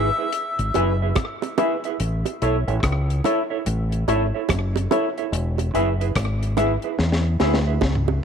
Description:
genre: roots reggae.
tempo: 72 BPM.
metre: 4/4.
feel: swing 62% on 16ths.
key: A major.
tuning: A4 = 440 Hz.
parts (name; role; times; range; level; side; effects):
clear harmonica; melody; 0.0-1.0 s; E5; -29 LUFS; left 2 dB; dub echo.
mellow electric guitar; accompaniment; 0.0-7.7 s; E4 to E5; -27 LUFS; right 12 dB; dub echo.
barky reed electric piano; stabs; 0.0-7.6 s; E4 to E5; -27 LUFS; left 14 dB; overdrive, fast tremolo.
deep dub fingered electric bass; bass; 0.0-8.2 s; E1 to E2; -22 LUFS; equal; none.
deep reggae drum kit; drums; 0.3-8.2 s; hi-hat, kick drum, rim click, snare drum, toms; -26 LUFS; left 1 dB; slapback echo.
bongos; percussion; 0.7-8.2 s; none; -27 LUFS; right 11 dB; none.
room: light reverb, small room reverb.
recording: 1960s-style stereo with parts hard left and right.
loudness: -20 LUFS.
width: side -7 dB against mid.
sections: 0.0-8.2 A section.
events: drum fill 7.0-8.2.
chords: 0.0 E; 2.0 A; 5.3 E.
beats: 0.33 1.16 | 1.99 2.83 3.66 4.49 | 5.32 6.16 6.99 7.82.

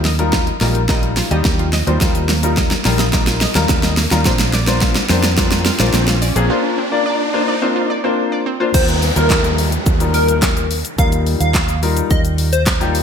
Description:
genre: dance-pop.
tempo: 107 BPM.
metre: 4/4.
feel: straight.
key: Eb major.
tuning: A4 = 440 Hz.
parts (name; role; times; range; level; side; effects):
warm grand piano; accompaniment; 0.0-13.0 s; G3 to D5; -20 LUFS; left 4 dB; lush chorus, sidechain pumping.
vintage muted fingered electric bass; bass; 0.0-13.0 s; Bb1 to F2; -18 LUFS; right 1 dB; sidechain pumping.
pop drum kit; drums; 0.0-13.0 s; crash cymbal, handclaps, hi-hat, kick drum, shaker, snare drum; -17 LUFS; right 1 dB; gated reverb.
riser and downlifter; sound effects; 2.7-13.0 s; none; -25 LUFS; right 1 dB; none.
analog pluck; arpeggios; 0.1-8.7 s; Bb3 to Eb5; -25 LUFS; right 3 dB; chorus, sidechain pumping, digital delay.
plucky unison lead; melody; 8.7-12.6 s; Bb4 to F5; -21 LUFS; equal; lush chorus, digital delay.
room: moderate lush hall reverb, RT60 1.8 s, digital ambience.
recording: bright 1980s-style digital production.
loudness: -13 LUFS.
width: side -7 dB against mid.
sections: 0.0-8.7 A section; 8.7-13.0 B section.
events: build-up 0.0-8.7; drum fill 0.0-6.5; riser 2.7-8.7; break 6.5-8.7; drop 8.7-13.0.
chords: 0.0 Ebadd9; 4.3 Bbadd9; 8.7 Ebadd9.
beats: 0.33 0.89 1.45 | 2.01 2.57 3.13 3.69 | 4.25 4.82 5.38 5.94 | 6.50 7.06 7.62 8.18 | 8.74 9.30 9.86 10.42 | 10.98 11.54 12.11 12.67.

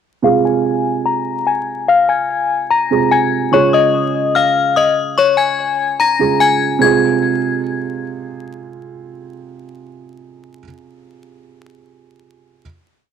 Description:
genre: hip hop, drill.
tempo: 146 BPM.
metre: 4/4.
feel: half-time.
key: F minor.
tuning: A4 = 439 Hz.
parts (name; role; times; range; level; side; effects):
metallic FM bell; melody; 0.2-8.0 s; Db5 to Bb6; -14 LUFS; left 6 dB; chorus, low-pass filter, cassette tape.
dark baby grand piano; accompaniment; 0.2-12.6 s; C3 to Ab4; -18 LUFS; right 8 dB; low-pass filter, cassette tape.
room: light reverb, studio ambience.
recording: home recording on cassette, vinyl crackle.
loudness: -13 LUFS.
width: side -8 dB against mid.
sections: 0.2-6.8 breakdown; 6.8-10.1 final chord.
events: filter sweep 0.2-6.8.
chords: 0.2 Fm; 3.5 Db; 6.8 Fm.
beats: | 0.24 0.65 1.06 1.47 | 1.88 2.29 2.71 3.12 | 3.53 3.94 4.35 4.76 | 5.17 5.58 5.99 6.41 | 6.82 7.23 7.64 8.05 | 8.46 8.87 9.28 9.69.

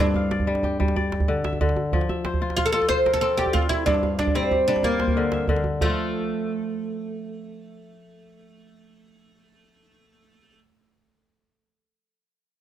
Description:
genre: west african traditional, West African string and xylophone music.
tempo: 123 BPM (dotted quarters).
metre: 12/8.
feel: straight.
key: unclear.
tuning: A4 = 441 Hz.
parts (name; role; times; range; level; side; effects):
oud; melody; 0.0-10.6 s; A3 to C5; -24 LUFS; right 1 dB; none.
kora; arpeggios; 0.0-10.7 s; G2 to F5; -26 LUFS; left 3 dB; none.
djembe; percussion; 0.1-6.0 s; none; -26 LUFS; right 2 dB; none.
room: moderate recital hall reverb, RT60 1.6 s.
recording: close, detailed microphones.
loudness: -21 LUFS.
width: side -11 dB against mid.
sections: 0.0-5.8 A section; 5.8-9.7 B section.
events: none.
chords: 0.0 G5; 1.9 F5; 3.9 Gm; 5.8 N.C..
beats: 0.47 0.96 1.44 | 1.93 2.42 2.90 3.39 | 3.87 4.36 4.84 5.33 | 5.82 6.30 6.79 7.28 | 7.76 8.25 8.73 9.22.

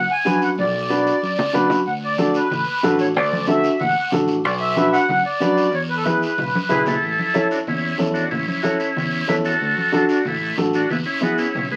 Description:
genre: latin, cumbia.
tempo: 186 BPM.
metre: 4/4.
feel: straight.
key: A major.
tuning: A4 = 438 Hz.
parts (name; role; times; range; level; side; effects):
accordion; second line; 0.0-6.8 s; A4 to G#5; -23 LUFS; equal; light tremolo tuning.
fingered electric bass; bass; 0.0-11.8 s; A1 to F#2; -29 LUFS; equal; none.
dark upright piano; accompaniment; 0.2-11.4 s; B3 to B4; -22 LUFS; equal; none.
congas; percussion; 0.3-11.7 s; none; -30 LUFS; equal; none.
guiro; percussion; 0.3-11.8 s; none; -36 LUFS; equal; none.
combo organ; melody; 6.7-11.8 s; A3 to B4; -24 LUFS; equal; none.
room: moderate studio ambience, RT60 0.5 s.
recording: very old 78 rpm record, vinyl crackle.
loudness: -20 LUFS.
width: mono.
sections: 0.0-7.0 A section; 7.0-11.8 B section.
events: accordion solo 0.0-7.0; drum fill 0.6-1.9, 6.5-7.0.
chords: 0.0 Bm; 1.9 D; 4.5 Bm; 5.7 E; 7.0 A; 9.6 D; 10.9 E.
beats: 0.26 | 0.58 0.91 1.23 1.55 | 1.87 2.19 2.52 2.84 | 3.16 3.48 3.81 4.13 | 4.45 4.77 5.09 5.42 | 5.74 6.06 6.38 6.71 | 7.03 7.35 7.67 8.00 | 8.32 8.64 8.96 9.29 | 9.61 9.93 10.25 10.57 | 10.90 11.22 11.54.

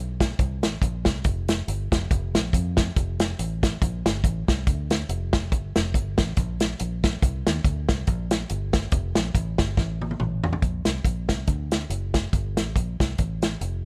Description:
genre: uptempo gospel.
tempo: 141 BPM.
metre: 4/4.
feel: swing 56% on 8ths.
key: Bb major.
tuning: A4 = 440 Hz.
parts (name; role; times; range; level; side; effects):
fingered electric bass; bass; 0.0-13.8 s; F1 to F2; -31 LUFS; equal; none.
warm soul drum kit; drums; 0.2-13.7 s; hi-hat, kick drum, snare drum, toms; -25 LUFS; equal; none.
room: little or no reverb.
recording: none.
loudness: -25 LUFS.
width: mono.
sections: 0.0-10.6 A section; 10.6-13.8 B section.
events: drum fill 9.8-10.6.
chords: none.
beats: | 0.39 0.82 1.25 1.68 | 2.10 2.53 2.96 3.38 | 3.81 4.24 4.67 5.09 | 5.52 5.94 6.37 6.80 | 7.22 7.65 8.07 8.50 | 8.93 9.35 9.78 10.20 | 10.63 11.05 11.48 11.91 | 12.33 12.76 13.19 13.62.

